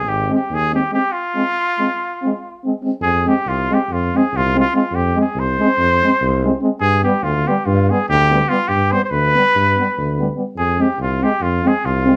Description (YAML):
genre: balkan folk, Balkan brass band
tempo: 286 BPM (eighths)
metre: 9/8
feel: straight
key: F dorian sharp4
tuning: A4 = 441 Hz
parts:
  - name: cornet with straight mute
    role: melody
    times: 0.0-12.2 s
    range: F4 to C5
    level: -20 LUFS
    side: equal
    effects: none
  - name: warm tuba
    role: bass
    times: 0.0-12.2 s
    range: Ab1 to G2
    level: -22 LUFS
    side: equal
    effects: none
  - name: mellow French horn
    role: accompaniment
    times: 0.3-12.1 s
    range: B3 to C4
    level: -22 LUFS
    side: equal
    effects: none
  - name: warm trombone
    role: accompaniment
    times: 0.3-12.1 s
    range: G3 to Ab3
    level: -26 LUFS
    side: equal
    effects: none
room: moderate studio ambience, RT60 0.5 s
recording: band playing live in one room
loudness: -17 LUFS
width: mono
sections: 0.0-3.0 A section; 3.0-12.2 B section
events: speeding up 0.0-12.2; break 1.1-3.0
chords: 0.0 Ab; 1.1 Fm; 6.8 G; 10.6 Fm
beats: 0.02 0.24 0.45 0.67 0.88 | 1.09 1.31 1.52 1.74 1.95 2.16 2.38 2.59 2.80 | 3.01 3.23 3.44 3.65 3.86 4.07 4.28 4.49 4.71 | 4.92 5.12 5.33 5.54 5.75 5.96 6.17 6.38 6.59 | 6.80 7.01 7.22 7.43 7.64 7.85 8.05 8.26 8.47 | 8.68 8.89 9.10 9.30 9.51 9.72 9.93 10.14 10.35 | 10.55 10.76 10.97 11.18 11.38 11.59 11.80 12.01